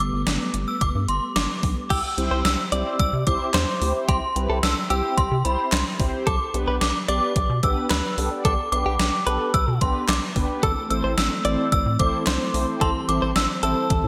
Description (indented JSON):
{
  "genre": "synth-pop",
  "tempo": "110 BPM",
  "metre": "4/4",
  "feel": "straight",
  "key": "C major",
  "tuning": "A4 = 440 Hz",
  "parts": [
    { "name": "synth chime", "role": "melody", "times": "0.0-14.1 s", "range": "B5 to E6", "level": "-28 LUFS", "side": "equal", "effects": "ensemble chorus, tremolo, delay" },
    { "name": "ensemble organ-string", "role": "sustained chords", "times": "0.0-1.9, 10.6-14.1 s", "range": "E3 to C4", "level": "-32 LUFS", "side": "equal", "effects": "phaser, ensemble chorus" },
    { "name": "rubbery square bass", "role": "bass", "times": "0.0-14.1 s", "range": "G1 to C3", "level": "-28 LUFS", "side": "equal", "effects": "none" },
    { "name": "gated 80s digital drum machine", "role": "drums", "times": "0.0-14.0 s", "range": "crash cymbal, handclaps, hi-hat, kick drum, snare drum", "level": "-27 LUFS", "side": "equal", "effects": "gated reverb, gated reverb snare, overdrive" },
    { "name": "direct-recorded clean electric guitar", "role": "second line", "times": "1.9-14.1 s", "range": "G4 to D5", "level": "-31 LUFS", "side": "equal", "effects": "delay" },
    { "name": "mellow synth brass", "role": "accompaniment", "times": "2.2-13.9 s", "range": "B3 to D5", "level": "-31 LUFS", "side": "equal", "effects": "chorus, phaser" }
  ],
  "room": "moderate lush hall reverb, RT60 1.9 s",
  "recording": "bright 1980s-style digital production",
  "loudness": "-23 LUFS",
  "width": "mono",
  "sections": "0.0-1.9 A section; 1.9-14.1 B section",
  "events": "none",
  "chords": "0.0 Gadd9; 1.9 C; 6.3 G/B; 10.6 Am",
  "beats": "0.27 0.81 1.36 | 1.90 2.45 2.99 3.54 | 4.08 4.63 5.18 5.72 | 6.27 6.81 7.36 7.90 | 8.45 8.99 9.54 10.09 | 10.63 11.18 11.72 12.27 | 12.81 13.36 13.90"
}